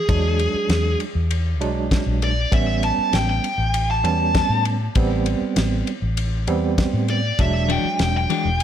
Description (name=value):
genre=straight-eighth soul blues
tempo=99 BPM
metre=4/4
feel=straight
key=unclear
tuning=A4 = 439 Hz
part: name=dark smooth lead guitar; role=melody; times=0.0-8.6 s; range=G#4 to A5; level=-23 LUFS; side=equal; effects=overdrive
part: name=overdriven tine electric piano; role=accompaniment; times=0.1-8.3 s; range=F#3 to D4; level=-25 LUFS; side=right 5 dB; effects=fast tremolo
part: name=vintage muted fingered electric bass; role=bass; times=0.1-8.6 s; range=E1 to A2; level=-22 LUFS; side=left 1 dB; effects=none
part: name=damped 70s drum kit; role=drums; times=0.1-8.6 s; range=kick drum, ride cymbal, snare drum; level=-25 LUFS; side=left 1 dB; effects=none
part: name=clean electric guitar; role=stabs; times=7.7-8.5 s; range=E3 to F#4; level=-24 LUFS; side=left 9 dB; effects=none
room=light reverb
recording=none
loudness=-18 LUFS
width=side -10 dB against mid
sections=0.0-8.6 A section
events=none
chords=0.0 E9; 2.5 A9; 5.0 Am7; 7.4 E9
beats=| 0.09 0.70 1.31 1.92 | 2.52 3.13 3.74 4.35 | 4.96 5.56 6.17 6.78 | 7.39 8.00 8.60